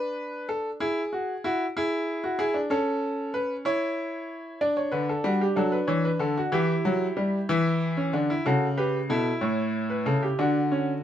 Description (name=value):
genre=classical, baroque-style 3-part fugue for grand piano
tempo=62 BPM (dotted quarters)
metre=12/8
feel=straight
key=D major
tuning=A4 = 440 Hz
part: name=bright baby grand piano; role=solo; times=0.0-11.0 s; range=A2 to D5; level=-24 LUFS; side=equal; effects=none
room=light reverb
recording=none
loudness=-24 LUFS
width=side -10 dB against mid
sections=0.0-11.0 A section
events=none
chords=0.0 Bm/D; 0.8 E; 2.7 A/C#; 4.6 D; 6.5 Em; 8.5 A7; 10.4 D